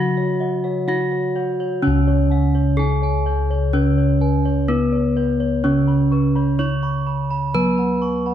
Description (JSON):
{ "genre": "Javanese gamelan", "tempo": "63 BPM", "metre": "4/4", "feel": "straight", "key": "unclear", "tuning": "A4 = 443 Hz", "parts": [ { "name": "gamelan-type bronze metallophone", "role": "melody", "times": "0.0-8.3 s", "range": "Cb4-45c to Db5", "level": "-22 LUFS", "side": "right 2 dB", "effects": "none" }, { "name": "gamelan-type bronze metallophone", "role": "accompaniment", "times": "0.0-8.3 s", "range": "Db3 to Cb4-45c", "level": "-22 LUFS", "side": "equal", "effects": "none" }, { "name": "gamelan-type bossed gongs", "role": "arpeggios", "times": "0.0-8.3 s", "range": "Cb5-45c to Db6", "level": "-29 LUFS", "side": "left 8 dB", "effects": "none" }, { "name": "gamelan-type bronze metallophone", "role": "arpeggios", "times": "0.0-8.3 s", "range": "Cb5-45c to Db6", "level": "-28 LUFS", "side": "right 3 dB", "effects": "none" }, { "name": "gamelan-type bossed gongs", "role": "bass", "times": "0.0-8.3 s", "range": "Db2 to Gb4-35c", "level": "-22 LUFS", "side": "left 2 dB", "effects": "none" } ], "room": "moderate scoring stage reverb, RT60 1.6 s", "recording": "dark, warm production", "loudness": "-17 LUFS", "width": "side -10 dB against mid", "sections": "0.0-8.3 A section", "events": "none", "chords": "none" }